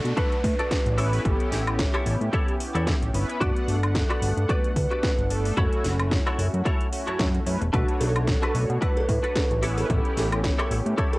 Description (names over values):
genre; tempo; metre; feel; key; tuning
nu-disco, nu disco; 111 BPM; 4/4; swing 56% on 16ths; B minor; A4 = 440 Hz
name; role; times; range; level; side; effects
vibraphone with medium hard mallets; melody; 0.0-10.9 s; F#4 to C#5; -31 LUFS; right 1 dB; tape echo
mellow synth brass; accompaniment; 0.0-11.2 s; A3 to F#5; -31 LUFS; equal; chorus, sidechain pumping, cassette tape
fat analog bass; bass; 0.0-10.9 s; E1 to B2; -25 LUFS; equal; tube saturation
downlifter; sound effects; 0.0-3.4 s; none; -42 LUFS; equal; none
house drum kit; drums; 0.1-11.2 s; hi-hat, snare drum, woodblock; -32 LUFS; equal; overdrive
direct-recorded clean electric guitar; riff; 0.2-11.2 s; D4 to D5; -31 LUFS; left 1 dB; ensemble chorus, cassette tape
electronic kick drum; drums; 0.2-11.1 s; none; -26 LUFS; equal; overdrive
cowbell; percussion; 8.0-11.2 s; none; -32 LUFS; right 2 dB; none
room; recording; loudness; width
light reverb; home recording on cassette; -22 LUFS; side -21 dB against mid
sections
0.0-11.2 A section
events
clean electric guitar fill 11.0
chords
0.0 Bm7; 1.0 A7; 3.4 Gmaj7; 5.6 F#m7; 7.7 Bm7; 9.6 A7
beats
0.17 0.71 | 1.25 1.79 2.33 2.87 | 3.41 3.95 4.49 5.04 | 5.58 6.12 6.66 7.20 | 7.74 8.28 8.82 9.36 | 9.90 10.44 10.98